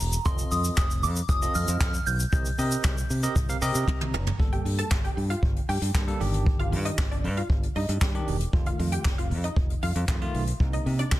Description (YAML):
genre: dance-pop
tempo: 116 BPM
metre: 4/4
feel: straight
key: G minor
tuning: A4 = 440 Hz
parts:
  - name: soft synth bell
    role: melody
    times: 0.0-3.8 s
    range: Bb5 to G6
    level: -31 LUFS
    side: right 1 dB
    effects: chorus, phaser
  - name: fingered electric bass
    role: bass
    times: 0.0-11.2 s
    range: E1 to C3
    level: -28 LUFS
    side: equal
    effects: sidechain pumping
  - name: jazz brush drum kit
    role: drums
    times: 0.0-11.2 s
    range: handclaps, hi-hat, kick drum, shaker, snare drum, toms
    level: -26 LUFS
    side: equal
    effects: none
  - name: bell-like tine electric piano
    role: accompaniment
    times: 0.3-11.2 s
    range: C3 to Bb5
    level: -32 LUFS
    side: right 2 dB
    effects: medium stereo tremolo, sidechain pumping
  - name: wide unison pluck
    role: melody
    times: 4.5-11.1 s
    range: D4 to A5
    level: -34 LUFS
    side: equal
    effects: sidechain pumping
room: little or no reverb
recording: dense, heavily limited modern master, lossy compression artefacts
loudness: -23 LUFS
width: side -15 dB against mid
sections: 0.0-4.4 A section; 4.4-11.2 B section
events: tine electric piano fill 3.4-4.4; drum fill 3.9-4.4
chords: 0.3 F7; 2.3 Cm7; 4.4 Gmadd9; 6.2 Ebmaj7/G; 8.5 F7; 10.6 Cm7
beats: | 0.26 0.77 1.29 1.81 | 2.33 2.84 3.36 3.88 | 4.39 4.91 5.43 5.95 | 6.46 6.98 7.50 8.02 | 8.53 9.05 9.57 10.09 | 10.60 11.12